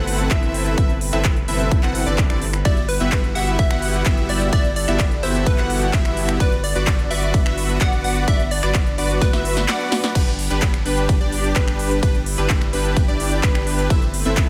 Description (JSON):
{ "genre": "EDM, festival progressive house", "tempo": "128 BPM", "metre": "4/4", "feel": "straight", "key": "G major", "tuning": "A4 = 440 Hz", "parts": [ { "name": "lush unison pad", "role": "sustained chords", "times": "0.0-14.5 s", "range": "C3 to F#5", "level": "-33 LUFS", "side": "equal", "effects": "chorus, sidechain pumping" }, { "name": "plucky unison lead", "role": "arpeggios", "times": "0.0-14.5 s", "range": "B4 to F#5", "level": "-31 LUFS", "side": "equal", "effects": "sidechain pumping, dub echo" }, { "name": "dense compressed supersaw", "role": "riff", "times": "0.0-14.5 s", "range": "B3 to F#5", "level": "-27 LUFS", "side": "equal", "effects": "sidechain pumping, dub echo" }, { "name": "saturated sub bass", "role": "bass", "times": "0.0-14.5 s", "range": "G1", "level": "-26 LUFS", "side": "equal", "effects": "sidechain pumping" }, { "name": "big-room dance drum kit", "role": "drums", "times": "0.1-14.5 s", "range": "crash cymbal, finger snaps, handclaps, hi-hat, ride cymbal, snare drum", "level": "-29 LUFS", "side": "equal", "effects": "none" }, { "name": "electronic kick drum", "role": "drums", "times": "0.3-14.5 s", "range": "none", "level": "-21 LUFS", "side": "equal", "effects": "none" }, { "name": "plucky unison lead", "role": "melody", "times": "2.7-10.2 s", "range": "B4 to F#5", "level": "-29 LUFS", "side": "equal", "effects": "dub echo" } ], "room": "digital ambience", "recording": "none", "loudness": "-19 LUFS", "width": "mono", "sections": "0.0-10.2 A section; 10.2-14.5 A section", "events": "drop 0.0-10.2, 10.2-14.5; drum fill 9.2-10.2", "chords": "0.0 Amadd9/G; 2.7 Emadd9/G; 6.4 Bm/G; 10.2 G; 13.9 Amadd9/G" }